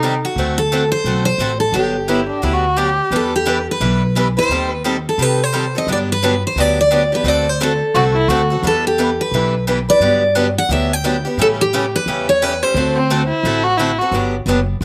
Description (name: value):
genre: acoustic string swing (jazz manouche)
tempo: 174 BPM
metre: 4/4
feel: swing 61% on 8ths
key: G major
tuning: A4 = 439 Hz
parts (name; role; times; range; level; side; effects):
- dark violin; second line; 0.0-3.1, 7.9-8.6, 13.0-14.1 s; C4 to G4; -21 LUFS; equal; slapback echo
- picked acoustic archtop guitar; accompaniment; 0.0-14.8 s; C#3 to B4; -24 LUFS; equal; slapback echo
- picked acoustic archtop guitar; accompaniment; 0.0-14.8 s; D3 to B4; -26 LUFS; equal; slapback echo
- upright bass; bass; 0.0-14.8 s; F#1 to C3; -24 LUFS; equal; none
- picked steel-string acoustic guitar; melody; 0.2-13.8 s; F#4 to G5; -20 LUFS; equal; slapback echo
room: little or no reverb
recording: recorded outdoors, with no room sound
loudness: -16 LUFS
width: mono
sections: 0.0-3.1 A section; 3.1-14.1 B section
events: none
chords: 0.4 D7; 1.7 Gmaj7; 3.1 Em7; 4.5 Cm6/Eb; 5.9 Gmaj7; 7.3 D7; 8.6 Em7; 10.0 Gmaj7; 11.4 A7; 12.8 D7; 14.1 Gmaj7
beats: 0.02 | 0.36 0.71 1.05 1.40 | 1.74 2.09 2.43 2.77 | 3.12 3.46 3.81 4.15 | 4.50 4.84 5.18 5.53 | 5.88 6.22 6.56 6.91 | 7.25 7.60 7.94 8.29 | 8.63 8.98 9.32 9.66 | 10.01 10.35 10.70 11.04 | 11.38 11.73 12.07 12.41 | 12.76 13.10 13.45 13.79 | 14.13 14.48 14.82